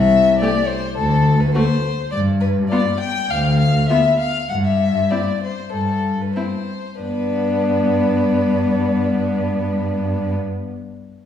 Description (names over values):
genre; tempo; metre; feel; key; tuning
quick classical-period movement for string quartet; 90-106 BPM; 4/4; rubato; G major; A4 = 440 Hz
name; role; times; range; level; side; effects
rich violin; melody; 0.0-10.3 s; A4 to G5; -21 LUFS; left 4 dB; none
warm cello; bass; 0.0-10.3 s; C2 to G2; -19 LUFS; left 1 dB; none
rich violin; second line; 0.4-10.3 s; D4 to G4; -24 LUFS; left 2 dB; none
clear viola; accompaniment; 0.4-10.3 s; A3 to C4; -24 LUFS; left 1 dB; none
room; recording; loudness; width
wet recital hall reverb, RT60 1.3 s; heard from further back in the room, studio reverb; -16 LUFS; side -9 dB against mid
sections
0.0-7.0 A section; 7.0-9.6 B section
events
slowing down 1.0-7.0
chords
0.0 Am/C (rootless); 1.0 D7(no3); 2.1 G7; 4.5 C/G; 7.0 G